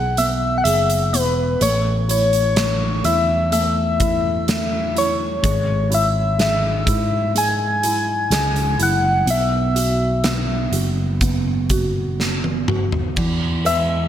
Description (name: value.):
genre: pop ballad.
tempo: 62 BPM.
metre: 4/4.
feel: straight.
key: E major.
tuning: A4 = 444 Hz.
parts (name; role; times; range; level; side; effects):
soft struck synth lead; melody; 0.0-14.1 s; B4 to G#5; -20 LUFS; left 2 dB; chorus.
felt-muted upright piano; accompaniment; 0.0-14.1 s; E3 to B4; -25 LUFS; right 2 dB; lush chorus.
fretless electric bass; bass; 0.0-14.1 s; E1 to G#2; -22 LUFS; equal; none.
huge arena drum kit; drums; 0.2-13.9 s; crash cymbal, hi-hat, kick drum, snare drum, toms; -24 LUFS; right 1 dB; none.
picked steel-string acoustic guitar; arpeggios; 13.2-14.1 s; E2 to G#3; -28 LUFS; equal; none.
room: moderate plate reverb, RT60 3.0 s.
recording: bright 1980s-style digital production.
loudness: -16 LUFS.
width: side -10 dB against mid.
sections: 0.0-13.2 A section.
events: drum fill 12.2-13.2.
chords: 0.0 Eadd9; 1.6 A; 5.4 C#m/G#; 9.3 Bsus4; 13.2 E.